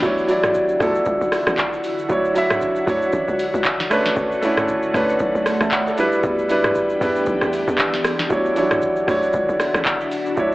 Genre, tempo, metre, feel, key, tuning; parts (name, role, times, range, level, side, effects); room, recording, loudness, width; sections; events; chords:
amapiano; 116 BPM; 4/4; swing 58% on 16ths; D major; A4 = 440 Hz
clear baby grand piano; accompaniment; 0.0-10.5 s; E3 to A5; -19 LUFS; equal
ethereal airy pad; sustained chords; 0.0-10.5 s; D3 to G4; -27 LUFS; left 1 dB; ensemble chorus, built-in reverb, phaser
tight log drum bass; bass; 0.0-10.5 s; A1 to E2; -27 LUFS; equal
booming analog drum machine; drums; 0.0-10.5 s; handclaps, hi-hat, kick drum, rim click, shaker, snare drum, toms; -24 LUFS; equal
moderate lush hall reverb, RT60 1.9 s; AM radio sound; -17 LUFS; side -18 dB against mid
0.0-10.5 A section
0.0 Dmaj9; 3.9 Bm9/D; 6.0 Em7; 8.3 Dmaj9